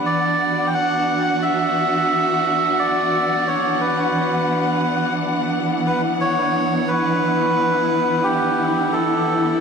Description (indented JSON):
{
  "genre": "ambient",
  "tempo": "88 BPM",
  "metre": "4/4",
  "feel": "straight",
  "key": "unclear",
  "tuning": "A4 = 440 Hz",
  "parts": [
    { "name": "dark symphonic string section", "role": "sustained chords", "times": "0.0-9.6 s", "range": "E3 to F#5", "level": "-20 LUFS", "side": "equal", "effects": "none" },
    { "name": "melodica", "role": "melody", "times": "0.1-9.6 s", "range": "G4 to G5", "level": "-20 LUFS", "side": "right 1 dB", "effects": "dub echo" }
  ],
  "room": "wet concert hall reverb, RT60 2.3 s",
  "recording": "none",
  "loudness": "-17 LUFS",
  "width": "side -6 dB against mid",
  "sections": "0.0-9.6 A section",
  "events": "none",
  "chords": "0.1 Bm/E",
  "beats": "| 0.06 0.74 1.42 2.10 | 2.78 3.46 4.15 4.83 | 5.51 6.19 6.87 7.55 | 8.24 8.92 9.60"
}